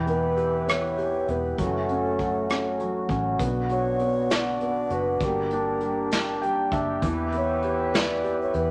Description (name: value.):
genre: six-eight pop ballad.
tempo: 66 BPM (dotted quarters).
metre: 6/8.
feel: straight.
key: unclear.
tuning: A4 = 437 Hz.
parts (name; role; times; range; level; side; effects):
felt-muted upright piano; accompaniment; 0.0-8.7 s; E3 to G5; -31 LUFS; equal; none.
chorused pulse-width pad; sustained chords; 0.0-8.7 s; E3 to B4; -31 LUFS; equal; none.
vintage muted fingered electric bass; bass; 0.0-8.7 s; E1 to E2; -36 LUFS; equal; none.
breathy bright alto ocarina; melody; 0.1-8.7 s; A4 to D5; -30 LUFS; equal; none.
vintage brush drum kit; drums; 0.1-8.7 s; hi-hat, kick drum, rim click, snare drum; -30 LUFS; equal; none.
room: moderate studio reverb, RT60 0.8 s.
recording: none.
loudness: -25 LUFS.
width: mono.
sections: 0.0-8.7 A section.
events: felt piano fill 6.1-7.0.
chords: 0.0 Em; 1.6 F#m; 3.4 Bm; 5.2 Gm; 7.0 Em.